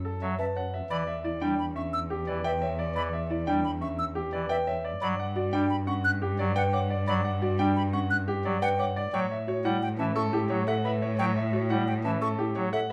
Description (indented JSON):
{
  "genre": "classical, minimalist pattern music",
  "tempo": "175 BPM",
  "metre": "6/4",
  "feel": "straight",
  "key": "E dorian",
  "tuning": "A4 = 440 Hz",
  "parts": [
    { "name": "bright concert grand piano", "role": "melody", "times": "0.0-12.9 s", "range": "G4 to A5", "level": "-34 LUFS", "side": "equal", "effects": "none" },
    { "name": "rich cello", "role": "bass", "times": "0.0-12.9 s", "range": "E2 to A2", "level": "-34 LUFS", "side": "equal", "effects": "none" },
    { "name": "pipe organ, soft reed", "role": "accompaniment", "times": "0.2-12.7 s", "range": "E3 to G3", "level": "-36 LUFS", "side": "equal", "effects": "none" },
    { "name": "bright silver concert flute", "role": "arpeggios", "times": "0.4-12.9 s", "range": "E5 to F#6", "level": "-34 LUFS", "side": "equal", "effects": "none" },
    { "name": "folk marimba with soft mallets", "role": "arpeggios", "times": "0.4-12.9 s", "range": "C#4 to C#5", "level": "-34 LUFS", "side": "equal", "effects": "none" }
  ],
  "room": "moderate large studio reverb, RT60 0.8 s",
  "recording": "dark, warm production",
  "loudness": "-28 LUFS",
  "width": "mono",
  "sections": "0.0-12.9 A section",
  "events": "none",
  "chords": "0.0 F#m7; 0.9 Em7; 5.0 Gmaj7; 9.1 A",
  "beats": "0.22 0.56 | 0.90 1.25 1.59 1.93 2.27 2.62 | 2.96 3.30 3.65 3.99 4.33 4.67 | 5.02 5.36 5.70 6.05 6.39 6.73 | 7.07 7.42 7.76 8.10 8.45 8.79 | 9.13 9.47 9.82 10.16 10.50 10.85 | 11.19 11.53 11.87 12.22 12.56 12.90"
}